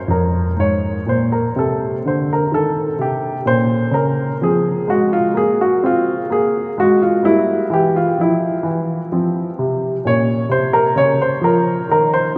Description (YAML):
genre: classical, baroque-style suite movement for grand piano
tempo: 64 BPM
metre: 3/4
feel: rubato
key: Bb minor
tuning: A4 = 439 Hz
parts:
  - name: warm baby grand piano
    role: solo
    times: 0.0-12.4 s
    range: F2 to Db5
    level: -17 LUFS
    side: equal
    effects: none
room: wet cathedral reverb, RT60 5.0 s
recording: recorded in a church or concert hall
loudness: -17 LUFS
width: mono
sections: 0.0-12.4 A section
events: none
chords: 0.0 Bbm; 1.6 Cm69; 3.5 Bbm; 4.4 Fm; 7.2 Edim; 9.1 F5; 10.0 Bbm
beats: 0.57 | 1.56 2.52 3.45 | 4.41 5.36 6.32 | 7.25 8.20 9.12 | 10.03 10.95 11.88